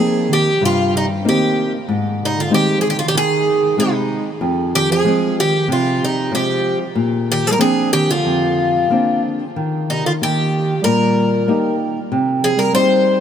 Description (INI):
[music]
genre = fado-style ballad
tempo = 94 BPM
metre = 4/4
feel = rubato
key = C minor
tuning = A4 = 440 Hz
[part]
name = picked twelve-string acoustic guitar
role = melody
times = 0.0-13.2 s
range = Eb4 to C5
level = -18 LUFS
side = left 1 dB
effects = none
[part]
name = breathy bass clarinet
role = second line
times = 0.0-13.2 s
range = C3 to G3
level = -23 LUFS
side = right 4 dB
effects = none
[part]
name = flamenco guitar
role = accompaniment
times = 0.0-13.2 s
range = F2 to G4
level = -19 LUFS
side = left 1 dB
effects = none
[sound]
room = moderate huge ambient reverb, RT60 8.3 s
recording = none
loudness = -14 LUFS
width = side -8 dB against mid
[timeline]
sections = 0.0-13.2 A section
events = none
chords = 0.0 Cm7; 1.9 Ab; 4.4 Fm; 7.0 Bbadd9; 9.6 Eb; 12.1 Cm